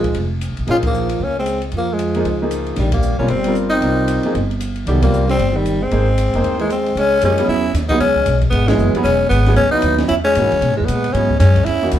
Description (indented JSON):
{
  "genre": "modal jazz",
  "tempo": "230 BPM",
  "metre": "4/4",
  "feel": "swing 60% on 8ths",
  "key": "Bb dorian, C# dorian from 7.0 s",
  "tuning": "A4 = 439 Hz",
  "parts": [
    { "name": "growling tenor saxophone", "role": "melody", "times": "0.0-11.9 s", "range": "G3 to F4", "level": "-18 LUFS", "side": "left 1 dB", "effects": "none" },
    { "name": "breathy trombone", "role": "second line", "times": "0.0-11.9 s", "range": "Eb3 to C#4", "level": "-23 LUFS", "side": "right 1 dB", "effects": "none" },
    { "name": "clear concert grand piano", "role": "accompaniment", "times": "0.0-12.0 s", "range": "E3 to C5", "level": "-22 LUFS", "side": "right 1 dB", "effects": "none" },
    { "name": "upright bass", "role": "bass", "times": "0.0-12.0 s", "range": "E1 to B2", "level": "-19 LUFS", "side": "equal", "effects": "none" },
    { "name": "compact cocktail drum kit", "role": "drums", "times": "0.0-12.0 s", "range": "hi-hat, kick drum, ride cymbal, snare drum", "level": "-27 LUFS", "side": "equal", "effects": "none" }
  ],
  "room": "wet studio reverb, RT60 0.7 s",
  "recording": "heard from further back in the room",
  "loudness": "-14 LUFS",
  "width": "side -11 dB against mid",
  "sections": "0.0-7.0 A section; 7.0-12.0 B section",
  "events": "band accent 0.8, 2.9, 5.0, 8.7",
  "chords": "0.0 Bbm7; 2.8 Cm7; 5.9 Ab; 7.0 C#m9",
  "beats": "0.15 0.42 | 0.68 0.94 1.20 1.46 | 1.73 1.99 2.25 2.51 | 2.77 3.04 3.30 3.56 | 3.82 4.08 4.34 4.61 | 4.87 5.13 5.39 5.65 | 5.91 6.18 6.44 6.70 | 6.96 7.22 7.48 7.74 | 8.01 8.27 8.53 8.79 | 9.05 9.31 9.57 9.83 | 10.10 10.36 10.62 10.88 | 11.14 11.40 11.66 11.92"
}